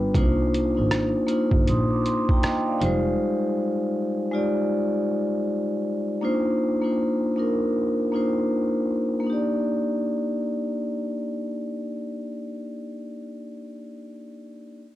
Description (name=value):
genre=lo-fi hip hop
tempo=79 BPM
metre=4/4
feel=swing 65% on 16ths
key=Eb major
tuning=A4 = 440 Hz
part: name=vibraphone with soft mallets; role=accompaniment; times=0.0-14.8 s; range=G3 to Eb6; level=-23 LUFS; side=equal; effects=low-pass filter
part: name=rich double bass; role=bass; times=0.1-3.0 s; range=F1 to C2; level=-26 LUFS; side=right 1 dB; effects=transformer saturation
part: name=trip hop sampler-style drum kit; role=drums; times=0.1-3.0 s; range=hi-hat, kick drum, rim click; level=-23 LUFS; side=right 1 dB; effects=none
room=light reverb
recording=dry, gritty hardware recording, cassette tape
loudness=-22 LUFS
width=side -14 dB against mid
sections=0.0-9.3 A section; 9.3-12.3 B section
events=none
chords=0.1 Cm11; 2.8 Fm9; 6.2 Cm11; 9.3 Ebmaj7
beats=| 0.15 0.91 1.67 2.42 | 3.19 3.94 4.70 5.46 | 6.22 6.98 7.74 8.50 | 9.26 10.02 10.78 11.54